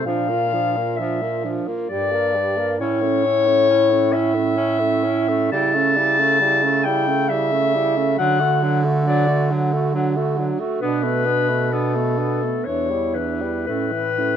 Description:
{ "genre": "classical, lyrical piece for single-reed quartet", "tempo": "58-70 BPM", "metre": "3/4", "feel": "rubato", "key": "D major from 5.5 s", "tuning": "A4 = 440 Hz", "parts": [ { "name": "warm clarinet", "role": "melody", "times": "0.0-14.4 s", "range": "A4 to A5", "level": "-20 LUFS", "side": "left 4 dB", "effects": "none" }, { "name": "mellow alto saxophone", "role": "second line", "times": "0.0-14.4 s", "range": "B3 to Bb4", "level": "-25 LUFS", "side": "right 10 dB", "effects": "none" }, { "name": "mellow tenor saxophone", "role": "accompaniment", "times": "0.0-14.4 s", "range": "E3 to C#4", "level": "-26 LUFS", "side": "left 2 dB", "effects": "none" }, { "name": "warm bass clarinet", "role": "bass", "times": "0.0-14.4 s", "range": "E2 to D3", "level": "-24 LUFS", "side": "right 2 dB", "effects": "none" } ], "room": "moderate recital hall reverb, RT60 1.6 s", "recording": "close, detailed microphones", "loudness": "-17 LUFS", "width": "side -8 dB against mid", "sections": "0.0-14.4 A section", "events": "none", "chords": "0.1 Bb; 1.9 Gm; 2.8 A; 5.5 A7/C#; 8.2 D; 10.8 Bm7; 12.7 Em7; 13.7 A" }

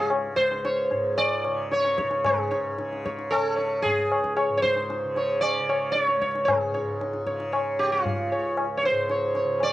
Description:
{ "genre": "indian classical, Hindustani", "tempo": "114 BPM", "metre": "4/4", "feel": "straight", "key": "unclear", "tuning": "A4 = 440 Hz", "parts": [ { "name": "sitar", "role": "melody", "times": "0.0-9.7 s", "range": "F4 to D5", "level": "-24 LUFS", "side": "right 1 dB", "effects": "cassette tape" }, { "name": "tanpura", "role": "drone", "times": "0.0-9.7 s", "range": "Db2 to Db3", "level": "-34 LUFS", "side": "equal", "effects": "cassette tape" }, { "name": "tabla", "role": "percussion", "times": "0.1-9.7 s", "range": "none", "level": "-28 LUFS", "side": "left 3 dB", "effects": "none" } ], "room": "light reverb, studio ambience", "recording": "home recording on cassette", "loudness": "-22 LUFS", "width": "side -15 dB against mid", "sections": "0.0-2.2 A section; 2.2-9.7 B section", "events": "speeding up 0.0-9.7", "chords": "none" }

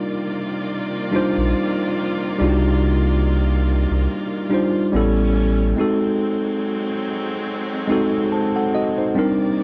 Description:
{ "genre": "hip hop", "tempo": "71 BPM", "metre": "4/4", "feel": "swing 56% on 16ths", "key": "unclear", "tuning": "A4 = 441 Hz", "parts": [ { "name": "mellow tine electric piano", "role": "accompaniment", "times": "0.0-9.6 s", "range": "G3 to A5", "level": "-22 LUFS", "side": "equal", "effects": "low-pass filter" }, { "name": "clear studio string section", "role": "sustained chords", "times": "0.0-9.6 s", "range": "C3 to D5", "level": "-30 LUFS", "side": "equal", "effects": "low-pass filter" }, { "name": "sub bass with octave", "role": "bass", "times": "1.4-5.7 s", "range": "A1 to C2", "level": "-21 LUFS", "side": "equal", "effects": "none" } ], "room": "little or no reverb", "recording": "none", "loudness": "-20 LUFS", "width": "mono", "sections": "0.0-9.6 A section", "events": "break 5.8-9.6", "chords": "0.0 Cm11; 4.9 A9; 5.8 Ab7b9" }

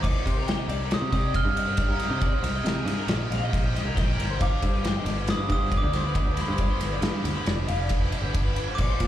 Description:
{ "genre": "math rock and midwest emo", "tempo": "137 BPM", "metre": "5/4", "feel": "straight", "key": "unclear", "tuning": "A4 = 441 Hz", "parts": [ { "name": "glockenspiel with soft plastic mallets", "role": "melody", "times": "0.0-9.1 s", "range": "B5 to F6", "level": "-33 LUFS", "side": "right 1 dB", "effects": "slapback echo, analog delay" }, { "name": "electric guitar through a small old amp", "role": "arpeggios", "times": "0.0-9.1 s", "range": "G4 to G5", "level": "-35 LUFS", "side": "left 6 dB", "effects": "ensemble chorus, slapback echo" }, { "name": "cranked stack guitar", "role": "riff", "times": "0.0-9.1 s", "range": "G2 to Eb4", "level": "-35 LUFS", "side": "equal", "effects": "overdrive, slapback echo" }, { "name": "picked electric bass", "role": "bass", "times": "0.0-9.1 s", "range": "F1 to C3", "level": "-28 LUFS", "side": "equal", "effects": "none" }, { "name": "loose indie drum kit", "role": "drums", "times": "0.0-9.1 s", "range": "crash cymbal, kick drum, ride cymbal, snare drum", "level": "-26 LUFS", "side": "equal", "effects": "none" } ], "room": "little or no reverb", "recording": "live gig heard through the venue's PA, club reverb", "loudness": "-23 LUFS", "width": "side -12 dB against mid", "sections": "0.0-9.1 A section", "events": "none", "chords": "0.0 Cm7; 4.4 G7" }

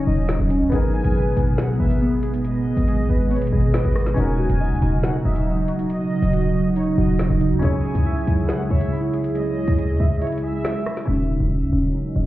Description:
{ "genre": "hip hop, drill", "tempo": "139 BPM", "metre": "4/4", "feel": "half-time", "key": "Eb phrygian", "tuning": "A4 = 440 Hz", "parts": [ { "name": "warm studio violin section", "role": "second line", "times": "0.0-11.0 s", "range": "Db5 to Ab5", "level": "-34 LUFS", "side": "equal", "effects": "tape echo" }, { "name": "clear concert grand piano", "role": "accompaniment", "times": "0.0-12.3 s", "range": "Cb4 to Db5", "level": "-32 LUFS", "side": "left 3 dB", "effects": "low-pass filter" }, { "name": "ethereal airy pad", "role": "sustained chords", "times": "0.0-12.3 s", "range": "Cb3 to Fb4", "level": "-24 LUFS", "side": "equal", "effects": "ensemble chorus, built-in reverb, low-pass filter" }, { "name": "warbly lo-fi synth keys", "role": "arpeggios", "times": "0.0-12.3 s", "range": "Cb4 to Fb5", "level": "-25 LUFS", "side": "right 1 dB", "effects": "chorus, phaser, low-pass filter, tape echo" }, { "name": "short 808-style bass", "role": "bass", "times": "0.0-12.3 s", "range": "Db1 to Eb2", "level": "-21 LUFS", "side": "equal", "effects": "none" }, { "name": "drill drum kit", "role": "drums", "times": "0.3-11.1 s", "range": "hi-hat, rim click, snare drum", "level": "-29 LUFS", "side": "equal", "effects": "none" } ], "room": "light reverb", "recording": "heard muffled through a wall, club reverb, EQ", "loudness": "-18 LUFS", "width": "side -15 dB against mid", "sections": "0.0-11.1 A section; 11.1-12.3 B section", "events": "break 10.2-11.1", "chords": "0.0 Ebm7; 0.7 Abmadd9; 4.2 Ebm7; 7.6 Dbm; 11.1 Ebm7" }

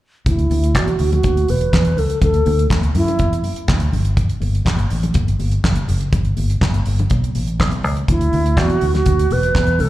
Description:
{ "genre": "disco", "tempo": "123 BPM", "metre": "4/4", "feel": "straight", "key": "D major", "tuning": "A4 = 445 Hz", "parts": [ { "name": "alto flute", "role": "melody", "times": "0.3-3.4, 8.1-9.9 s", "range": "E4 to B4", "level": "-20 LUFS", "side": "right 2 dB", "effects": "low-pass filter, slapback echo" }, { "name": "fingered electric bass", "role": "bass", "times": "0.3-9.9 s", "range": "E1 to F#2", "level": "-17 LUFS", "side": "equal", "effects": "none" }, { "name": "damped 70s drum kit", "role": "drums", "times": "0.3-9.9 s", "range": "handclaps, hi-hat, kick drum, snare drum", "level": "-20 LUFS", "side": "equal", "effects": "none" }, { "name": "congas", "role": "percussion", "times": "0.3-9.9 s", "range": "none", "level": "-29 LUFS", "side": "left 4 dB", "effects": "slapback echo" } ], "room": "small room ambience", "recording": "live gig heard through the venue's PA, club reverb", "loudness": "-15 LUFS", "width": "side -15 dB against mid", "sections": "0.3-9.9 A section", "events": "filter sweep on alto flute 0.3-9.9", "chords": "0.3 Dadd9; 3.9 N.C.; 8.1 Dadd9" }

